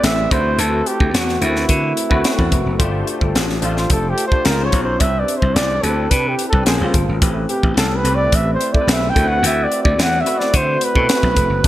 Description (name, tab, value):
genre	polished 1980s jazz-funk pop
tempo	108 BPM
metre	4/4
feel	straight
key	unclear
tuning	A4 = 440 Hz
part	mellow flugelhorn	melody	0.0-11.7 s	E4 to G5	-20 LUFS	right 1 dB	none
part	barky tine electric piano	accompaniment	0.0-11.7 s	A3 to C5	-22 LUFS	left 2 dB	ensemble chorus
part	slap bass	bass	0.0-11.7 s	F1 to D3	-19 LUFS	equal	none
part	crisp fusion drum kit	drums	0.0-11.7 s	hi-hat, kick drum, snare drum	-18 LUFS	equal	gated reverb
room	moderate plate reverb, RT60 3.0 s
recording	bright 1980s-style digital production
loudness	-14 LUFS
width	side -14 dB against mid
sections	0.0-11.7 A section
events	flugelhorn solo 0.0-11.7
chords	0.3 D13; 2.8 G9sus4; 4.5 C#maj9; 5.0 Cmaj9; 6.7 Bbm9; 7.2 Am9; 9.2 D13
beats	0.04 | 0.59 1.14 1.69 2.25 | 2.80 3.35 3.90 4.46 | 5.01 5.56 6.12 6.67 | 7.22 7.78 8.33 8.88 | 9.44 9.99 10.54 11.09 | 11.64